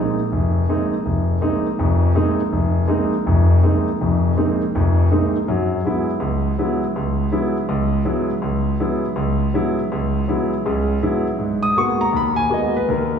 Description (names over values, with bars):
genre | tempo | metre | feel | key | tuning
jazz | 162 BPM | 4/4 | swing 63% on 8ths | unclear | A4 = 439 Hz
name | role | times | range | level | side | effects
warm concert grand piano | solo | 0.0-13.2 s | F1 to D#6 | -17 LUFS | equal | none
room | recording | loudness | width
wet scoring stage reverb, RT60 1.9 s | recorded in a church or concert hall, small room ambience | -17 LUFS | side -7 dB against mid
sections
0.0-11.4 A section; 11.4-13.2 B section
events
none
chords
0.0 Bb9sus4; 5.5 Gb9sus4; 11.4 G#m9